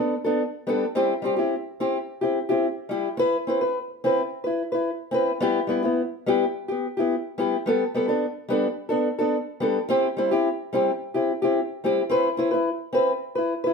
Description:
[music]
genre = highlife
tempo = 107 BPM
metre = 4/4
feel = straight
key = unclear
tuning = A4 = 445 Hz
[part]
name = fingerpicked old ladder-braced acoustic guitar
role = solo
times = 0.0-13.7 s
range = G3 to B4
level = -22 LUFS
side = left 1 dB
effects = none
[sound]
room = wet studio reverb, RT60 0.8 s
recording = band playing live in one room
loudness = -22 LUFS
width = side -5 dB against mid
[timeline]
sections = 0.0-13.7 A section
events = none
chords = 0.0 Gadd9; 1.0 C; 3.2 Cmaj7; 5.4 Em; 7.7 Gadd9; 9.9 C; 12.1 Cmaj7

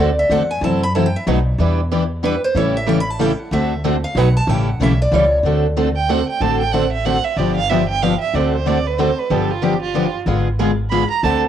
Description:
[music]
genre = acoustic string swing (jazz manouche)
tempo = 187 BPM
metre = 3/4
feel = swing 61% on 8ths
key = D mixolydian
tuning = A4 = 443 Hz
[part]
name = picked steel-string acoustic guitar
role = melody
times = 0.0-5.4 s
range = B4 to B5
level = -21 LUFS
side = equal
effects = cassette tape
[part]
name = picked steel-string acoustic guitar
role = accompaniment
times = 0.0-11.4 s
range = B2 to A4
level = -21 LUFS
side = left 8 dB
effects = cassette tape
[part]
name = picked steel-string acoustic guitar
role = accompaniment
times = 0.0-11.4 s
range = B2 to B4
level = -21 LUFS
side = right 8 dB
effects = cassette tape
[part]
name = upright bass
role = bass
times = 0.0-11.5 s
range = G1 to F#2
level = -20 LUFS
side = equal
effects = none
[part]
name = warm violin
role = second line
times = 6.0-11.3 s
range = F4 to B5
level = -21 LUFS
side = right 7 dB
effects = cassette tape
[sound]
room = light reverb, small room ambience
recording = home recording on cassette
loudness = -15 LUFS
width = side -10 dB against mid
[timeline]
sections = 0.0-5.4 A section; 5.4-11.5 A section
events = steel-string acoustic guitar solo 0.0-5.4; violin solo 5.4-11.5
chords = 0.0 D7; 0.6 F#m7b5; 1.3 B7; 1.6 Em7; 2.6 A7; 3.5 D7; 4.2 B7; 4.5 A7; 5.4 D7; 7.4 G7; 8.3 D7; 9.3 G7; 10.3 G#dim7

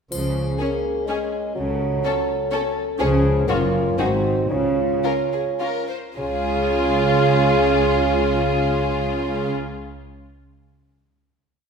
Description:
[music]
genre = cinematic, playful, whimsical film cue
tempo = 104-126 BPM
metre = 3/4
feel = straight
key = Db major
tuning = A4 = 440 Hz
[part]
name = dark bassoon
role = accompaniment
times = 0.1-9.5 s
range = F3 to Db4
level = -24 LUFS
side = right 6 dB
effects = none
[part]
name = warm French horn section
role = sustained chords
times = 0.1-9.5 s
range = Db4 to A4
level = -25 LUFS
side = left 4 dB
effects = none
[part]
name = warm chamber double bass section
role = bass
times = 0.1-9.5 s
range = Gb1 to Db2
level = -26 LUFS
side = right 1 dB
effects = none
[part]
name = warm studio cello section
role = bass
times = 0.1-9.5 s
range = Gb2 to Db3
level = -26 LUFS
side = right 2 dB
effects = none
[part]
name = triangle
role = percussion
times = 0.1-1.0 s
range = none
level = -38 LUFS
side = left 3 dB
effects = none
[part]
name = warm chamber violin section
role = melody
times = 0.6-9.5 s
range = Ab4 to Db5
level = -28 LUFS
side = left 4 dB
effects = none
[part]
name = dark studio violin section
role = second line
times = 0.6-9.5 s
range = F4 to A4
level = -28 LUFS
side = left 4 dB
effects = none
[part]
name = warm chamber viola section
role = accompaniment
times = 0.6-9.5 s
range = Db4 to F4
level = -29 LUFS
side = equal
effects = none
[sound]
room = wet scoring stage reverb, RT60 1.6 s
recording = heard from further back in the room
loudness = -18 LUFS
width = side -6 dB against mid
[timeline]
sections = 0.1-6.2 A section; 6.2-9.6 final chord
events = slowing down 2.3-6.2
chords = 0.1 Db; 1.6 Gbm/Db; 3.0 Db; 3.5 Gbmaj7; 4.0 Ab7; 4.5 Db

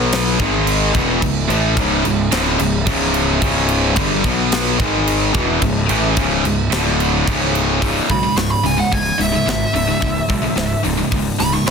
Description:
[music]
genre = heavy metal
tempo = 109 BPM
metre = 4/4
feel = straight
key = C# minor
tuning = A4 = 436 Hz
[part]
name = hollow soft pad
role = sustained chords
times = 0.0-7.8 s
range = D3 to F#5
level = -28 LUFS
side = right 1 dB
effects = none
[part]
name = heavy high-gain guitar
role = riff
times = 0.0-11.7 s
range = C#2 to B3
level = -20 LUFS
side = right 12 dB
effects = distortion
[part]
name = high-gain distorted guitar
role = riff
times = 0.0-11.7 s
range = C#2 to B3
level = -20 LUFS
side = left 14 dB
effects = distortion
[part]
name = fuzz picked electric bass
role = bass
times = 0.0-11.7 s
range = C#1 to B1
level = -22 LUFS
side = equal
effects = overdrive
[part]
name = tight metal drum kit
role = drums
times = 0.1-11.7 s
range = crash cymbal, hi-hat, kick drum, snare drum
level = -22 LUFS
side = right 1 dB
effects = none
[part]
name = dark smooth lead guitar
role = melody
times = 8.1-11.7 s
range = E5 to C#6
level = -20 LUFS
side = right 1 dB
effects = overdrive, tape echo
[sound]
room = small room ambience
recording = dense, heavily limited modern master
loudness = -14 LUFS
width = side -6 dB against mid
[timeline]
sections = 0.0-7.8 A section; 7.8-11.7 B section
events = half time 0.0-7.8; lead electric guitar solo 7.8-11.7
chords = 0.4 G#5; 0.9 C#m; 4.2 B5; 4.8 G#5; 5.3 C#m; 6.7 D5; 7.3 C#m

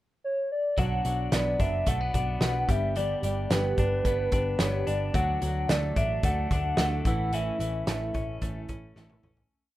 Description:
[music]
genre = jangly indie pop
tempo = 110 BPM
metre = 4/4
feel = straight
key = unclear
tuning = A4 = 440 Hz
[part]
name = warbly nostalgic lead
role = melody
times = 0.2-9.0 s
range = B4 to F#5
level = -30 LUFS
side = equal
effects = chorus
[part]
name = fingerpicked steel-string acoustic guitar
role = accompaniment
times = 0.8-9.5 s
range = G2 to G4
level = -36 LUFS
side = right 4 dB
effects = none
[part]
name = twelve-string electric guitar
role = arpeggios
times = 0.8-9.8 s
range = E3 to D4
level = -35 LUFS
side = left 4 dB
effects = none
[part]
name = vintage muted picked electric bass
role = bass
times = 0.8-9.5 s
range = F#1 to D2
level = -30 LUFS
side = equal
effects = none
[part]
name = loose indie drum kit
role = drums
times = 0.8-9.5 s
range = hi-hat, kick drum, snare drum, toms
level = -29 LUFS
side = equal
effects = none
[sound]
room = light reverb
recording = rough home demo mix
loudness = -25 LUFS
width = side -15 dB against mid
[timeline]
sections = 0.0-0.8 pickup bar; 0.8-9.5 verse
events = fade-out 7.3-9.5; drum fill 9.0-9.5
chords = 0.0 N.C.; 0.8 Bm; 2.7 G; 5.1 D; 7.1 A

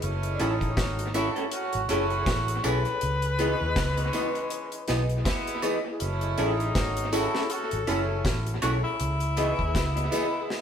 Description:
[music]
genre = lovers rock reggae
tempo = 80 BPM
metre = 4/4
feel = swing 57% on 16ths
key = F# dorian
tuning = A4 = 441 Hz
[part]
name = warm horn section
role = second line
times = 0.0-10.6 s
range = E3 to A4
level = -33 LUFS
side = right 2 dB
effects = none
[part]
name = vintage muted fingered electric bass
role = bass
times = 0.0-10.1 s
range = F#1 to D#2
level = -29 LUFS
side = equal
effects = none
[part]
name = deep reggae drum kit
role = drums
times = 0.0-10.6 s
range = hi-hat, kick drum, snare drum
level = -31 LUFS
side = equal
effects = dub echo
[part]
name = breathy tenor saxophone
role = melody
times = 0.3-10.6 s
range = D4 to B4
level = -31 LUFS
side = left 2 dB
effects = none
[part]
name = FM electric piano with soft pad layer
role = accompaniment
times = 0.4-10.4 s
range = E4 to D#5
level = -32 LUFS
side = left 2 dB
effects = chorus, tremolo, dub echo
[part]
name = electric guitar through a small old amp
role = stabs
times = 0.4-10.2 s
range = E3 to A4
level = -33 LUFS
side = right 3 dB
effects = spring reverb
[part]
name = tambourine and woodblock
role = percussion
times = 0.4-10.3 s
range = none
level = -40 LUFS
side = right 2 dB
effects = none
[sound]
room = wet stone room reverb, RT60 1.0 s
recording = band playing live in one room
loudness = -24 LUFS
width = side -8 dB against mid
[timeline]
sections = 0.0-10.6 A section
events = none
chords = 0.0 F#m7; 3.0 C#m9; 6.0 F#m7; 9.0 C#m9

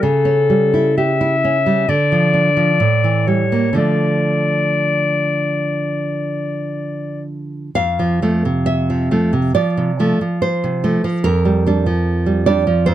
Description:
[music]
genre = romantic duo for clarinet and classical guitar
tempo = 58-75 BPM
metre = 4/4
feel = rubato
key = D minor, F major from 7.8 s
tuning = A4 = 436 Hz
[part]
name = bright clarinet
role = melody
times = 0.0-7.2 s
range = A4 to E5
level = -17 LUFS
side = left 4 dB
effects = none
[part]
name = nylon-string guitar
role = accompaniment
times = 0.0-12.9 s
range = F2 to F5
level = -16 LUFS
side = right 2 dB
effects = none
[sound]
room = light reverb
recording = close, detailed microphones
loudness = -14 LUFS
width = side -12 dB against mid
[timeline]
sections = 0.0-7.8 A section; 7.8-12.9 B section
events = none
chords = 0.0 A7/C#; 1.9 Dm; 2.8 A7b9; 3.8 Dm; 7.8 F; 11.2 Gm7/F

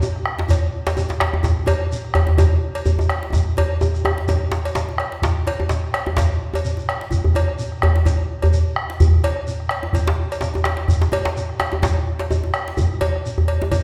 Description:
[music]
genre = west african traditional, West African drum ensemble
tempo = 127 BPM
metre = 4/4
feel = swing 56% on 16ths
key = none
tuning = none
[part]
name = djembe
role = percussion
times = 0.0-13.7 s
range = none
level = -22 LUFS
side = equal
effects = none
[part]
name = shekere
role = percussion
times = 0.0-13.8 s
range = none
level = -33 LUFS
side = equal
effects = none
[part]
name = bombo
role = percussion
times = 0.2-13.8 s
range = none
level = -25 LUFS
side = equal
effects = none
[part]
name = djembe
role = percussion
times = 0.4-13.8 s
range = none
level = -28 LUFS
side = equal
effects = none
[part]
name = cowbell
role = percussion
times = 0.5-13.8 s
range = none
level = -30 LUFS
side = equal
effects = none
[sound]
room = wet recital hall reverb, RT60 1.4 s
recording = recorded in a church or concert hall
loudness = -20 LUFS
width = mono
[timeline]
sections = 0.0-5.2 A section; 5.2-13.8 B section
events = drum fill 3.3-5.2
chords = none

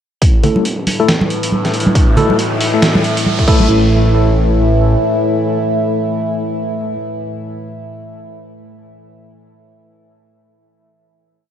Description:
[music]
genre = deep dubstep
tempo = 138 BPM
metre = 4/4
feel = swing 60% on 16ths, half-time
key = unclear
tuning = A4 = 440 Hz
[part]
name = overtone-sweeping drone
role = sustained chords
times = 0.7-6.9 s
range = A2 to E4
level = -18 LUFS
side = equal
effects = chorus, built-in reverb
[part]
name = dark detuned saw bass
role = bass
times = 0.2-5.0 s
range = G1 to B1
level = -17 LUFS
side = equal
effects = high-pass filter
[part]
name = electronic kick drum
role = drums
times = 0.2-3.6 s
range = none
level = -12 LUFS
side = equal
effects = none
[part]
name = trip hop sampler-style drum kit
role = drums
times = 0.2-3.6 s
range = crash cymbal, hi-hat, snare drum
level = -19 LUFS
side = equal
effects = none
[part]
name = riser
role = sound effects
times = 0.9-3.7 s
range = none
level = -26 LUFS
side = right 1 dB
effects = none
[part]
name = tine electric piano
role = stabs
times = 0.4-6.9 s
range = A3 to A4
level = -18 LUFS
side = left 2 dB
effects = medium stereo tremolo, vintage 12-bit sampler grit, low-pass filter, dub echo
[part]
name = congas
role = percussion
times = 0.4-3.7 s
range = none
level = -18 LUFS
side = right 2 dB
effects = dub echo
[sound]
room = light reverb, digital ambience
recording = dry, gritty hardware recording, cassette tape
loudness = -12 LUFS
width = side -10 dB against mid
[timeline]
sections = 0.2-3.7 build; 3.7-7.2 final hit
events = build-up 0.2-3.7; filter sweep on tine electric piano 0.2-3.7; riser 0.9-3.7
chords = 0.2 A5

